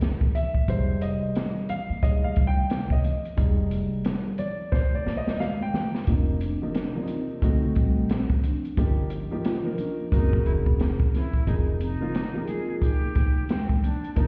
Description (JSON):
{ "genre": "hip hop, jazz-hop", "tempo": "89 BPM", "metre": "4/4", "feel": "swing 61% on 16ths", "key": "unclear", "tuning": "A4 = 440 Hz", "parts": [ { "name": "dark upright piano", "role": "accompaniment", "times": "0.0-14.3 s", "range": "C3 to G5", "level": "-32 LUFS", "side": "equal", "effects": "none" }, { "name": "open jazz drum kit", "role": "drums", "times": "0.0-14.3 s", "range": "hi-hat, kick drum, snare drum", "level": "-27 LUFS", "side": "equal", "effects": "none" }, { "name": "tube shaker and congas", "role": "percussion", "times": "0.0-14.3 s", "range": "none", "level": "-40 LUFS", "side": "equal", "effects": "none" }, { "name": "upright bass", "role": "bass", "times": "0.7-14.3 s", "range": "Fb1 to Eb2", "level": "-30 LUFS", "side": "equal", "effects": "none" }, { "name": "vibraphone with soft mallets", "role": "melody", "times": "5.4-14.3 s", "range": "G3 to F4", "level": "-34 LUFS", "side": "equal", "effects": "analog delay" }, { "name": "breathy hollow jazz flute", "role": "second line", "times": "10.1-14.3 s", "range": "C4 to Ab4", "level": "-39 LUFS", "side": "equal", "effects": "none" } ], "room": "little or no reverb", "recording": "heard muffled through a wall, stone room reverb, EQ", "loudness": "-25 LUFS", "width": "mono", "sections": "0.0-6.1 A section; 6.1-14.3 B section", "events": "upright piano solo 0.0-6.1; drum fill 4.7-6.1", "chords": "0.0 Gb13 (rootless); 0.7 Fm9; 6.1 F5; 7.4 D7b9; 8.8 Eb9/G; 10.1 Gb9; 11.5 Fm9" }